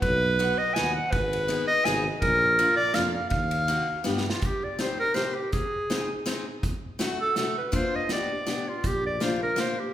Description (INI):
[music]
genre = alpine folk, alpine dance band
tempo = 164 BPM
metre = 3/4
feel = swing 54% on 8ths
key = Eb harmonic minor, C minor from 4.4 s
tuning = A4 = 440 Hz
[part]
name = bright clarinet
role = melody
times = 0.0-9.9 s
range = F4 to Ab5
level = -25 LUFS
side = equal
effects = none
[part]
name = mellow tuba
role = bass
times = 0.0-4.3, 8.8-9.6 s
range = Ab1 to G2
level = -31 LUFS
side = right 1 dB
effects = none
[part]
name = loose indie drum kit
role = drums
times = 0.0-9.7 s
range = hi-hat, kick drum, ride cymbal, snare drum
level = -32 LUFS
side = equal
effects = none
[part]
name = picked steel-string acoustic guitar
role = accompaniment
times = 0.4-9.8 s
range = A3 to Ab4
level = -32 LUFS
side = left 3 dB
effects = none
[sound]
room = wet recital hall reverb, RT60 1.7 s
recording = recorded in a church or concert hall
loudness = -23 LUFS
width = side -11 dB against mid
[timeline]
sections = 0.0-4.4 A section; 4.4-9.9 B section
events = drum fill 4.1-4.4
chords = 0.0 B; 1.1 Abm; 2.2 Bb; 3.3 Ebmadd9; 4.1 G7; 4.4 Cm; 5.5 Ab; 6.6 D; 7.7 Bb; 8.1 G; 8.8 Bb